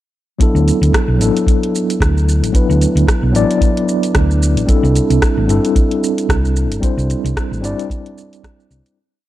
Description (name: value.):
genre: sunset chillout.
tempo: 112 BPM.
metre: 4/4.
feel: swing 57% on 16ths.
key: D mixolydian.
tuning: A4 = 440 Hz.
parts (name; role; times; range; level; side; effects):
mellow tine electric piano; accompaniment; 0.4-9.0 s; F#3 to D5; -16 LUFS; moving between left 3 dB and right 4 dB; medium stereo tremolo, auto-pan, tape echo.
deep house drum kit; drums; 0.4-9.0 s; hi-hat, rim click, shaker; -23 LUFS; equal; overdrive.
electronic kick drum; drums; 0.4-8.6 s; none; -15 LUFS; equal; overdrive.
hollow-body short-scale fingered electric bass; bass; 0.5-8.8 s; G1 to D2; -14 LUFS; equal; none.
room: light reverb.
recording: dry, gritty hardware recording, cassette tape.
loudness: -12 LUFS.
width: side -14 dB against mid.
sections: 0.4-9.0 groove.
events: fade-out 6.1-9.0.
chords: 0.4 D69; 4.7 C69.